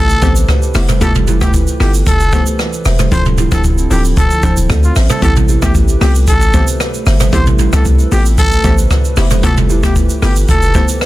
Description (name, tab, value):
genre	afrobeats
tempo	114 BPM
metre	4/4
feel	straight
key	A minor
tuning	A4 = 440 Hz
part	growling trumpet	melody	0.0-10.9 s	F4 to C5	-19 LUFS	equal	none
part	hollow soft pad	sustained chords	0.0-11.1 s	C3 to B4	-25 LUFS	equal	chorus
part	hard-hitting 808-style bass	bass	0.0-10.8 s	D1 to D2	-13 LUFS	equal	none
part	downlifter	sound effects	0.7-1.0 s	none	barely audible	none	none
part	jazz brush drum kit	drums	0.1-11.1 s	hi-hat, kick drum, rim click, shaker, toms	-13 LUFS	equal	soft clipping on snare
part	hollow square pluck	accompaniment	0.2-11.0 s	F3 to G4	-21 LUFS	left 3 dB	chorus
part	buzzing kalimba	riff	0.2-11.1 s	E4 to E5	-23 LUFS	right 4 dB	tape echo
room	small room ambience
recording	dense, heavily limited modern master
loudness	-9 LUFS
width	side -16 dB against mid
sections	0.0-11.1 A section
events	none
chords	0.0 Am9; 0.7 Fmaj9#11; 3.1 Dm9; 5.2 Am9; 9.2 Fmaj9#11